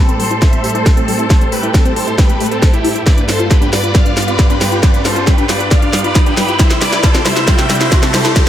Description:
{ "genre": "uplifting trance", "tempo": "136 BPM", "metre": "4/4", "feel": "straight", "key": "A minor", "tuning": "A4 = 440 Hz", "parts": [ { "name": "big supersaw lead", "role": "melody", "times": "0.0-8.5 s", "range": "C4 to G5", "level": "-18 LUFS", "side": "right 1 dB", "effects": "phaser, sidechain pumping, low-pass filter, diffuse ambient delay" }, { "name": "muted studio string section", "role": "sustained chords", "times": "0.0-8.5 s", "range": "G2 to A4", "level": "-20 LUFS", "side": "equal", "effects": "sidechain pumping" }, { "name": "riser", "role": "sound effects", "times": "1.4-8.5 s", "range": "none", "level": "-24 LUFS", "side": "equal", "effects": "none" }, { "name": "tight sequenced synth", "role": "arpeggios", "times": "0.1-8.5 s", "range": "G3 to F4", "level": "-21 LUFS", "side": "left 2 dB", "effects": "chorus, sidechain pumping, diffuse ambient delay" }, { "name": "house drum kit", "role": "drums", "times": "0.1-8.5 s", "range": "hi-hat, snare drum", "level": "-18 LUFS", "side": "equal", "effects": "high-pass filter on snare, high-pass filter on hats" }, { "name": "electronic kick drum", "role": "drums", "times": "0.4-8.4 s", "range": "none", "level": "-11 LUFS", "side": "equal", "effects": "none" } ], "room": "moderate plate reverb, RT60 1.9 s, digital ambience", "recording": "dreamy mix soaked in reverb", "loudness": "-10 LUFS", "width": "side -11 dB against mid", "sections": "0.0-8.5 A section", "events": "build-up 0.0-8.5; drum fill 0.0-8.5; filter sweep on supersaw synth 0.0-8.5; filter sweep on synth arpeggio sound 0.0-8.5; riser 1.4-8.5", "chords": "0.0 Am7; 3.1 G7; 6.6 C6" }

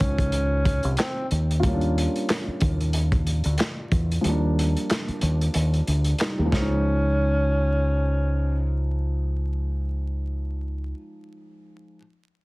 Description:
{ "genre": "hip hop, boom-bap hip-hop", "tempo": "92 BPM", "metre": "4/4", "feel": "swing 56% on 16ths", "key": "Db major", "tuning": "A4 = 440 Hz", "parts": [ { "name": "breathy tenor saxophone", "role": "melody", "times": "0.0-1.3, 6.5-8.8 s", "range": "C4 to Db4", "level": "-27 LUFS", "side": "equal", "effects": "high-pass filter, low-pass filter" }, { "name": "dark upright piano", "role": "accompaniment", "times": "0.0-12.0 s", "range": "F3 to C5", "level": "-30 LUFS", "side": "equal", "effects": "high-pass filter, low-pass filter" }, { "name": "deep dub fingered electric bass", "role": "bass", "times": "0.0-10.9 s", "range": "C2 to Fb2", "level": "-23 LUFS", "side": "equal", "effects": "none" }, { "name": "crunchy breakbeat drum kit", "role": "drums", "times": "0.0-6.7 s", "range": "handclaps, hi-hat, kick drum, snare drum", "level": "-26 LUFS", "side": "equal", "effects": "none" } ], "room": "light reverb", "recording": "heavily compressed radio sound, multiband compression, vinyl crackle", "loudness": "-21 LUFS", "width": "side -23 dB against mid", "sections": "0.0-6.8 A section; 6.8-9.5 B section", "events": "kick muted 4.2-6.8", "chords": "0.0 Dbmaj9; 1.3 Ebmaj9; 6.5 Dbmaj9" }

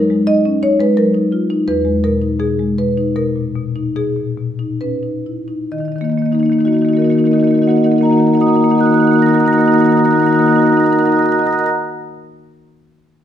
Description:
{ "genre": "classical, contemporary piece for solo marimba", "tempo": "65-88 BPM", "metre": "5/4", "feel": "straight", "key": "Eb minor", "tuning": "A4 = 440 Hz", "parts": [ { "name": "marimba with soft mallets", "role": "solo", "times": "0.0-11.8 s", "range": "E2 to Bb6", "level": "-12 LUFS", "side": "equal", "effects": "none" } ], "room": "wet recital hall reverb, RT60 1.3 s", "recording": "none", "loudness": "-12 LUFS", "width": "side -10 dB against mid", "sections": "0.0-5.7 A section; 5.7-10.3 B section", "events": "slowing down 0.0-5.7", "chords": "0.0 Gb69; 1.7 Emaj7; 5.7 Ebm" }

